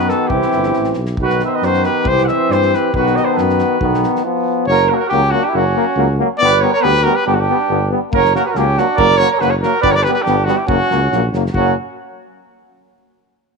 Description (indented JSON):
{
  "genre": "balkan folk, Balkan brass band",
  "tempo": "139 BPM",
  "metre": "2/4",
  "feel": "swing 54% on 16ths",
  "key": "B phrygian dominant",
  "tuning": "A4 = 440 Hz",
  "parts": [
    { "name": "mellow trumpet", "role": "melody", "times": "0.0-11.7 s", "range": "F#4 to F#5", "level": "-18 LUFS", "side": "left 3 dB", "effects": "none" },
    { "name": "warm flugelhorn", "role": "second line", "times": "0.0-11.7 s", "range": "C#4 to D#5", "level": "-20 LUFS", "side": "right 13 dB", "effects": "none" },
    { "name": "bright trombone", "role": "accompaniment", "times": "0.0-11.7 s", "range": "A#3 to C4", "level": "-20 LUFS", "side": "left 15 dB", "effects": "none" },
    { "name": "clear euphonium", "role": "accompaniment", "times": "0.0-11.7 s", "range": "D#3 to G3", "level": "-21 LUFS", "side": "right 13 dB", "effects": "none" },
    { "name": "dark tuba", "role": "bass", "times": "0.0-11.7 s", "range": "F#1 to G2", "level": "-20 LUFS", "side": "left 1 dB", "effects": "none" },
    { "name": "loose indie drum kit", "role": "percussion", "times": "0.1-4.2, 8.1-11.7 s", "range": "kick drum, snare drum", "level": "-26 LUFS", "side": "equal", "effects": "none" }
  ],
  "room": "moderate plate reverb, RT60 2.3 s",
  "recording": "1960s-style stereo with parts hard left and right",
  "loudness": "-12 LUFS",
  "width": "side -4 dB against mid",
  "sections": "0.0-4.7 A section; 4.7-11.5 B section",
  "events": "break 4.2-4.7",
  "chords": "0.3 C; 1.2 B; 2.1 C; 2.9 B; 4.2 N.C.; 4.7 F#; 6.4 G; 8.1 F#; 9.8 G; 10.7 F#"
}